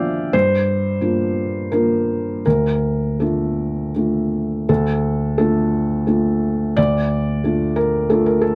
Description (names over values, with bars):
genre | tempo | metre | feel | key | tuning
neoclassical minimalist piano | 79-92 BPM | 3/4 | rubato | D minor | A4 = 439 Hz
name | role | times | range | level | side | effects
felt-muted upright piano | solo | 0.0-8.6 s | D2 to G5 | -19 LUFS | equal | none
room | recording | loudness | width
light reverb | close, detailed microphones | -19 LUFS | mono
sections
0.0-4.7 A section; 4.7-8.6 A section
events
none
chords
0.3 Gm7; 2.4 Dm